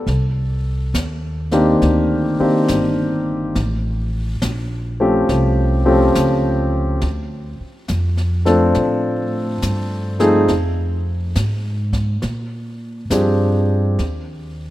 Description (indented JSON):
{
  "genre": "jazz ballad",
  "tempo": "69 BPM",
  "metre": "4/4",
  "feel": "swing 66% on 8ths",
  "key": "unclear",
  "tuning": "A4 = 440 Hz",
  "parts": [
    { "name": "warm grand piano", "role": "accompaniment", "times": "0.0-14.0 s", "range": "Eb3 to A4", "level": "-16 LUFS", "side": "left 1 dB", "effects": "none" },
    { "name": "upright bass", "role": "bass", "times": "0.1-14.7 s", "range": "G1 to Bb2", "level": "-20 LUFS", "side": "equal", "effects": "none" },
    { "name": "jazz brush drum kit", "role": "drums", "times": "0.1-14.7 s", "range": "brushed snare drum, hi-hat, kick drum, snare drum", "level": "-29 LUFS", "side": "left 1 dB", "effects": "none" }
  ],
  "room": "light reverb, small room reverb",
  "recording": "rough home demo mix",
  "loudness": "-16 LUFS",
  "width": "side -15 dB against mid",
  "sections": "0.1-14.7 A section",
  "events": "none",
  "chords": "0.1 Cm9; 3.6 A7alt; 7.0 Dm7; 10.5 Fm; 12.2 Bb13; 14.0 N.C."
}